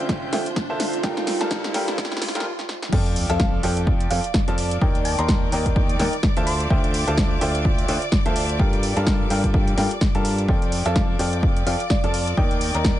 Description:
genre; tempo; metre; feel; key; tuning
piano house; 127 BPM; 4/4; swing 57% on 16ths; F mixolydian; A4 = 440 Hz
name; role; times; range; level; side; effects
warm symphonic string section; sustained chords; 0.0-13.0 s; F4 to G6; -32 LUFS; equal; sidechain pumping
bright upright piano; riff; 0.0-13.0 s; D3 to Bb5; -26 LUFS; equal; sidechain pumping, low-pass filter, ping-pong delay
fingered electric bass; bass; 0.0-13.0 s; D2 to G2; -26 LUFS; equal; sidechain pumping, high-pass filter
riser and sub drop; sound effects; 0.0-4.8 s; none; -31 LUFS; equal; none
deep dark ambient pad; texture; 0.0-2.5 s; Bb3 to G5; -32 LUFS; right 6 dB; chorus, built-in reverb, sidechain pumping
electronic kick drum; drums; 0.1-13.0 s; none; -21 LUFS; equal; none
punchy analog drum machine; drums; 0.1-13.0 s; crash cymbal, hi-hat, snare drum; -27 LUFS; equal; none
thumb-piano-like synth pluck; melody; 3.3-6.8, 10.9-12.1 s; D5 to C6; -30 LUFS; equal; chorus, phaser, ping-pong delay
room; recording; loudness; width
little or no reverb; high-pass filter, nothing above 10.9 kHz; -19 LUFS; side -13 dB against mid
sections
0.0-2.9 A section; 2.9-13.0 B section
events
build-up 0.0-2.9; drum fill 0.0-2.5, 2.6-2.9; riser 0.0-2.5; filter sweep 0.0-2.9; stop 2.5-2.9; drop 2.9-13.0; impact 2.9-4.8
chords
0.0 Dm11; 1.0 Gm9; 2.9 F69; 4.8 Ebmaj7; 6.5 Dm11; 8.6 Gm9; 10.5 F69; 12.4 Ebmaj7

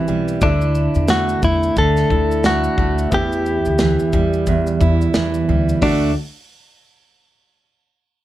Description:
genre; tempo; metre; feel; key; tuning
acoustic pop; 89 BPM; 4/4; swing 60% on 16ths; D major; A4 = 441 Hz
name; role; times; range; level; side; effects
fingerpicked steel-string acoustic guitar; accompaniment; 0.0-6.1 s; E2 to F#4; -19 LUFS; right 4 dB; none
warm upright piano; accompaniment; 0.0-6.1 s; A3 to E5; -29 LUFS; left 3 dB; none
upright bass; bass; 0.0-6.1 s; B1 to E2; -20 LUFS; equal; none
modern studio drum kit; drums; 0.1-6.0 s; hi-hat, kick drum, shaker, snare drum; -23 LUFS; equal; none
direct-recorded clean electric guitar; melody; 0.4-6.1 s; D4 to A4; -20 LUFS; left 1 dB; none
room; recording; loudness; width
light reverb; none; -15 LUFS; side -14 dB against mid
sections
0.0-5.8 A section; 5.8-8.2 B section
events
none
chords
0.4 Dsus2; 3.1 Em; 5.8 D

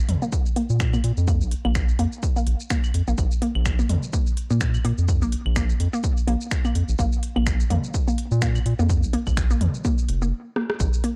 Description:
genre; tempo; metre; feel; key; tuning
minimal techno; 126 BPM; 4/4; swing 57% on 16ths; unclear; A4 = 443 Hz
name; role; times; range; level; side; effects
round analog bass; bass; 0.0-10.9 s; F1 to Bb2; -24 LUFS; equal; sidechain pumping
garage drum kit; drums; 0.1-11.1 s; finger snaps, hi-hat, rim click, shaker; -35 LUFS; equal; none
electronic toms and claves; percussion; 0.1-9.7 s; none; -34 LUFS; equal; overdrive, tape echo
hollow square pluck; riff; 0.2-11.1 s; Bb3; -31 LUFS; equal; chorus, sidechain pumping, tape echo
electronic kick drum; drums; 0.3-10.9 s; none; -26 LUFS; equal; none
deep dark ambient pad; texture; 11.0-11.2 s; Bb4 to F5; -52 LUFS; equal; none
room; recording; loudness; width
little or no reverb; dry, gritty hardware recording, cassette tape; -23 LUFS; mono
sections
0.0-10.8 A section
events
break 10.3-10.8; drum fill 10.6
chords
0.0 Bb5

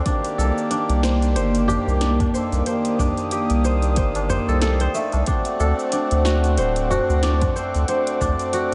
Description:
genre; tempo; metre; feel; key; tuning
organic downtempo; 92 BPM; 4/4; swing 57% on 16ths; unclear; A4 = 440 Hz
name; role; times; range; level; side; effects
hand-pumped harmonium; accompaniment; 0.0-8.7 s; Eb3 to A4; -28 LUFS; equal; sidechain pumping, diffuse ambient delay
warm analog pad; sustained chords; 0.0-8.7 s; Bb3 to Eb6; -28 LUFS; equal; chorus, sidechain pumping
kora; arpeggios; 0.0-8.7 s; A3 to C5; -28 LUFS; equal; low-pass filter, diffuse ambient delay
deep house drum kit; drums; 0.1-8.7 s; cabasa, hi-hat, snare drum; -34 LUFS; equal; overdrive
electronic kick drum; drums; 0.1-8.4 s; none; -26 LUFS; equal; overdrive
round analog bass; bass; 0.4-8.3 s; D1 to D2; -23 LUFS; equal; sidechain pumping
tabla; percussion; 0.4-8.4 s; none; -34 LUFS; equal; none
room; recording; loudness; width
moderate plate reverb, RT60 3.5 s; dreamy mix soaked in reverb, nothing above 10.5 kHz; -21 LUFS; mono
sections
0.0-8.7 A section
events
none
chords
0.1 Cm9; 5.3 D7

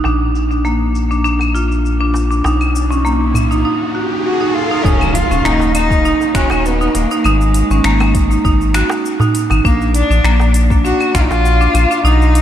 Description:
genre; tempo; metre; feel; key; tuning
organic downtempo; 100 BPM; 4/4; straight; Eb minor; A4 = 439 Hz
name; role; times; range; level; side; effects
marimba with hard mallets; arpeggios; 0.0-12.2 s; Bb3 to F#4; -17 LUFS; right 1 dB; diffuse ambient delay
round analog bass; bass; 0.0-12.4 s; Eb1 to B1; -15 LUFS; equal; sidechain pumping
darbuka; percussion; 0.0-11.9 s; none; -24 LUFS; right 1 dB; none
riser and impact; sound effects; 1.9-7.2 s; none; -25 LUFS; left 1 dB; none
organic electronic drum kit; drums; 0.1-12.4 s; claves, finger snaps, hi-hat, shaker; -23 LUFS; left 2 dB; overdrive
clear cello; melody; 4.2-12.4 s; Ab3 to Gb4; -18 LUFS; equal; diffuse ambient delay
electronic kick drum; drums; 4.8-11.3 s; none; -16 LUFS; equal; none
room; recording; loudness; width
moderate cathedral reverb, RT60 6.7 s; dreamy mix soaked in reverb, low-pass filter; -12 LUFS; side -10 dB against mid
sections
0.0-4.8 A section; 4.8-12.4 B section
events
filter sweep 0.0-4.8; riser 1.9-4.8; impact 4.8-7.2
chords
0.0 Bb; 2.4 B; 4.8 Ebm7; 7.2 Ab5; 9.6 Bb

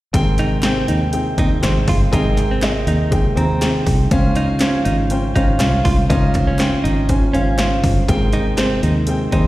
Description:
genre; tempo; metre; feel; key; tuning
piano-driven pop; 121 BPM; 4/4; straight; Ab major; A4 = 439 Hz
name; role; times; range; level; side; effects
warm upright piano; accompaniment; 0.1-9.5 s; Ab2 to Bb5; -20 LUFS; equal; slapback echo
mellow tonewheel organ; sustained chords; 0.1-9.5 s; C3 to C5; -26 LUFS; right 1 dB; none
fingered electric bass; bass; 0.1-9.5 s; G1 to Eb2; -19 LUFS; equal; none
punchy analog drum machine; drums; 0.1-9.4 s; hi-hat, kick drum, snare drum; -20 LUFS; equal; overdrive
direct-recorded clean electric guitar; riff; 0.4-9.4 s; C4 to F4; -26 LUFS; right 3 dB; slapback echo
group handclap; percussion; 0.4-8.7 s; none; -35 LUFS; right 1 dB; none
room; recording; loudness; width
light reverb; live gig heard through the venue's PA, recital hall reverb; -14 LUFS; side -16 dB against mid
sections
0.1-9.5 A section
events
none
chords
0.1 Abmaj7; 4.1 Dbmaj7; 8.1 Abmaj7

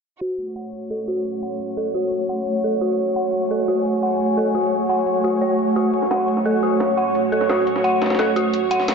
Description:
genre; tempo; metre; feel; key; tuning
dark technical drum and bass; 173 BPM; 4/4; straight; F# minor; A4 = 440 Hz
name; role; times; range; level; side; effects
deep dark ambient pad; sustained chords; 1.1-8.9 s; A3 to G#5; -22 LUFS; right 2 dB; chorus, built-in reverb
dark detuned synth bell; arpeggios; 0.2-8.8 s; F#4 to F#5; -23 LUFS; equal; chorus, low-pass filter, dub echo
electronic hi-hat; drums; 0.2-8.9 s; none; -41 LUFS; right 1 dB; overdrive
warm studio string section; texture; 0.2-8.9 s; A3 to C#5; -24 LUFS; left 2 dB; none
breakbeat sampler-style drum kit; drums; 5.8-8.9 s; hi-hat, snare drum; -27 LUFS; left 1 dB; high-pass filter on hats, high-pass filter on snare, high-pass filter on room
room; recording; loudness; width
moderate digital room reverb, RT60 1.2 s, digital ambience; low-pass filter, nothing above 7.7 kHz; -18 LUFS; side -5 dB against mid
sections
0.2-8.9 A section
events
filter sweep on synth bell 0.2-8.9; filter sweep 0.2-8.9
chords
0.2 F#m

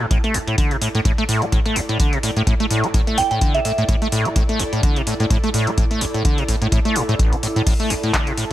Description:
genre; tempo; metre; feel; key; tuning
acid house; 127 BPM; 4/4; swing 56% on 16ths; unclear; A4 = 439 Hz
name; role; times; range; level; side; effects
liquid acid bass; riff; 0.0-8.5 s; A1 to C4; -20 LUFS; equal; overdrive, analog chorus, analog delay
airy breathy pad; texture; 0.0-8.5 s; E4 to A5; -29 LUFS; equal; chorus, sidechain pumping
electro analog drum machine; drums; 0.1-8.5 s; crash cymbal, handclaps, hi-hat; -26 LUFS; equal; studio reverb
electronic kick drum; drums; 0.1-8.2 s; none; -19 LUFS; equal; studio reverb
soft synth bell; melody; 3.2-3.7 s; E5 to G5; -22 LUFS; right 3 dB; chorus, analog delay
room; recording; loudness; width
little or no reverb; none; -16 LUFS; side -14 dB against mid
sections
0.0-8.5 A section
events
fade-in on analog synth pad 0.0-8.5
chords
0.0 A5

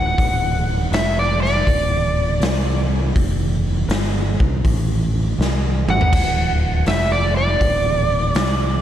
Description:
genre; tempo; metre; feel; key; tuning
blues rock power trio and southern rock; 81 BPM; 4/4; swing 67% on 8ths; D mixolydian; A4 = 440 Hz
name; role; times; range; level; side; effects
overdriven slide guitar; melody; 0.0-8.8 s; D5 to F#5; -21 LUFS; right 1 dB; slapback echo
fingered electric bass; bass; 0.0-8.8 s; D1 to C2; -20 LUFS; equal; none
raw garage drum kit; drums; 0.2-8.6 s; crash cymbal, hi-hat, kick drum, snare drum, toms; -20 LUFS; equal; none
room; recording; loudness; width
light reverb; none; -16 LUFS; side -11 dB against mid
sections
0.0-8.8 A section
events
electric slide guitar solo 0.0-8.8; drum fill 5.4-6.1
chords
0.0 D5

